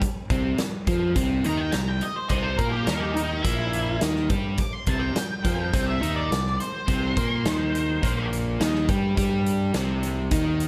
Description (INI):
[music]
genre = blues rock power trio and southern rock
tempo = 105 BPM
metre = 4/4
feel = straight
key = unclear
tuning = A4 = 440 Hz
[part]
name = crunchy overdriven guitar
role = riff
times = 0.0-10.7 s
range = Bb2 to Bb4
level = -29 LUFS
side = equal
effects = none
[part]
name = fuzz fingered electric bass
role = bass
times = 0.0-10.7 s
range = Bb1 to Bb2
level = -30 LUFS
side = equal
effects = overdrive
[part]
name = big rock drum kit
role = drums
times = 0.0-10.7 s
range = hi-hat, kick drum, snare drum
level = -30 LUFS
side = equal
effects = none
[part]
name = octave-fuzz lead guitar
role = melody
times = 1.5-8.3 s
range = Eb4 to D6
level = -32 LUFS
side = equal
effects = wah, distortion, slapback echo, plate reverb
[sound]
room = light reverb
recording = none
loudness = -25 LUFS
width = mono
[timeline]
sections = 0.0-10.7 A section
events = none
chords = 0.0 C5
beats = | 0.01 0.58 1.16 1.73 | 2.30 2.87 3.44 4.01 | 4.58 5.16 5.73 6.30 | 6.88 7.45 8.02 8.60 | 9.17 9.74 10.32